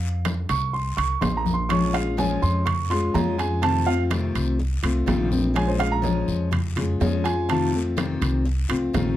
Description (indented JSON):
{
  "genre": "latin, Cuban son and guajira",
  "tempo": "124 BPM",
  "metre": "4/4",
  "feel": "straight",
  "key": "Bb minor",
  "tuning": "A4 = 442 Hz",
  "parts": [
    { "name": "warm grand piano", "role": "arpeggios", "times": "0.0-7.7 s", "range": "C5 to Db6", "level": "-26 LUFS", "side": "right 5 dB", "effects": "none" },
    { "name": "upright bass", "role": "bass", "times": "0.0-9.2 s", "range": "Bb1 to F2", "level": "-25 LUFS", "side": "equal", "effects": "none" },
    { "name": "congas", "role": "percussion", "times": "0.0-9.2 s", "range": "none", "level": "-30 LUFS", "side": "left 2 dB", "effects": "none" },
    { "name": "guiro", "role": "percussion", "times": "0.3-9.2 s", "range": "none", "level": "-40 LUFS", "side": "left 7 dB", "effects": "none" },
    { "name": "timbales", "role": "percussion", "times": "0.3-9.2 s", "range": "none", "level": "-30 LUFS", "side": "right 5 dB", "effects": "none" },
    { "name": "picked steel-string acoustic guitar", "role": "accompaniment", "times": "1.7-9.2 s", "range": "C3 to F4", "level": "-24 LUFS", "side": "left 3 dB", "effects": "none" }
  ],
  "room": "moderate studio ambience, RT60 0.5 s",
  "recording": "close, detailed microphones",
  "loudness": "-20 LUFS",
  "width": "side -13 dB against mid",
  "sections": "0.0-9.2 A section",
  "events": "grand piano solo 0.0-9.2",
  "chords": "0.0 F5; 1.7 Bbm7; 3.6 F7; 5.6 Bbm7; 7.5 F7"
}